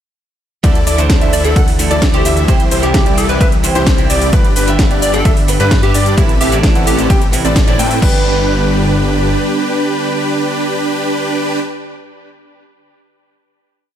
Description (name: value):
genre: EDM, festival progressive house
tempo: 130 BPM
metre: 4/4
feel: straight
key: G major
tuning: A4 = 440 Hz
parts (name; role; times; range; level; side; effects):
- picked old ladder-braced acoustic guitar; accompaniment; 0.6-11.6 s; G2 to E5; -22 LUFS; right 5 dB; sidechain pumping, tape echo
- lush unison pad; sustained chords; 0.6-11.6 s; C3 to B4; -23 LUFS; left 2 dB; chorus, sidechain pumping
- clear concert grand piano; arpeggios; 0.6-11.6 s; B4 to G5; -22 LUFS; equal; sidechain pumping, tape echo
- dense compressed supersaw; riff; 0.6-11.6 s; C4 to G5; -18 LUFS; right 1 dB; sidechain pumping, tape echo
- wide detuned saw bass; bass; 0.6-9.4 s; G1 to A2; -17 LUFS; equal; chorus, tube saturation, sidechain pumping
- electronic kick drum; drums; 0.6-8.1 s; none; -13 LUFS; equal; overdrive, small room ambience
- house drum kit; drums; 0.6-8.1 s; crash cymbal, hi-hat, ride cymbal, shaker, snare drum; -20 LUFS; equal; small room ambience
- plucky unison lead; melody; 1.3-7.2 s; G4 to D5; -20 LUFS; left 1 dB; vintage 12-bit sampler grit, tape echo
room: light reverb, digital ambience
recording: none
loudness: -10 LUFS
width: side -10 dB against mid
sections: 0.6-8.0 drop; 8.0-11.7 final chord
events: drop 0.6-8.0; band accent 7.6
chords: 0.6 Dsus2; 2.5 C; 4.3 G; 6.2 Amadd9; 8.0 G